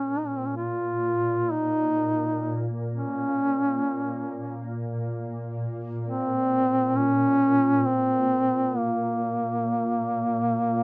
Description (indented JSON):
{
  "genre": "caucasian folk, Caucasian lament",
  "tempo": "free time",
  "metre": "none",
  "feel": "none",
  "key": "Bb minor",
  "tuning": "A4 = 440 Hz",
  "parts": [
    { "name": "mellow duduk", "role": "melody", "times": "0.0-10.8 s", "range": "Bb3 to F4", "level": "-26 LUFS", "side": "equal", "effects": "none" },
    { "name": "shimmering ambient pad", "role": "drone", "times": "0.1-10.8 s", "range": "Bb2", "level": "-34 LUFS", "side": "equal", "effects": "chorus, built-in reverb" }
  ],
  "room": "light reverb",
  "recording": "rough home demo mix",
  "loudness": "-26 LUFS",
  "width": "mono",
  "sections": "0.0-10.8 A section",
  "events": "none",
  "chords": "none",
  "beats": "free time"
}